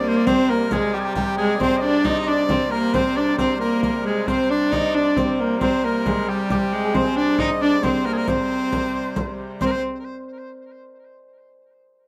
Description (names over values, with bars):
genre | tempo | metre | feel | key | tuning
medieval dance | 90 BPM (dotted quarters) | 6/8 | straight | C minor | A4 = 440 Hz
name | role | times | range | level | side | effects
rich viola da gamba | melody | 0.0-9.8 s | G3 to Eb4 | -24 LUFS | equal | none
edgy shawm | second line | 0.0-9.8 s | G4 to Eb5 | -30 LUFS | equal | tape echo
hammered dulcimer | second line | 0.0-10.9 s | G4 to Eb5 | -28 LUFS | equal | none
clear hurdy-gurdy | drone | 0.0-9.7 s | C3 to G3 | -33 LUFS | equal | none
frame drum | percussion | 0.3-9.8 s | none | -32 LUFS | equal | none
riq | percussion | 0.3-9.8 s | none | -34 LUFS | equal | none
room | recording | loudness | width
moderate studio reverb, RT60 0.5 s | rough home demo mix | -21 LUFS | mono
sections
0.0-9.6 A section; 9.6-10.9 B section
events
none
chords
none